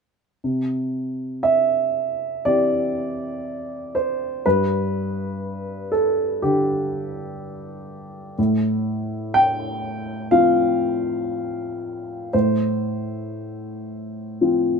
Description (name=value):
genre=neoclassical minimalist piano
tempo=60 BPM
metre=4/4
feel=rubato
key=C major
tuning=A4 = 437 Hz
part: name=warm upright piano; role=solo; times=0.4-14.8 s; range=G2 to G5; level=-20 LUFS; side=equal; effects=none
room=light reverb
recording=minimal, uncompressed stereo recording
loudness=-20 LUFS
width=side -5 dB against mid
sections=0.4-14.8 A section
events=none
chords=0.4 C; 4.4 G; 8.4 F/A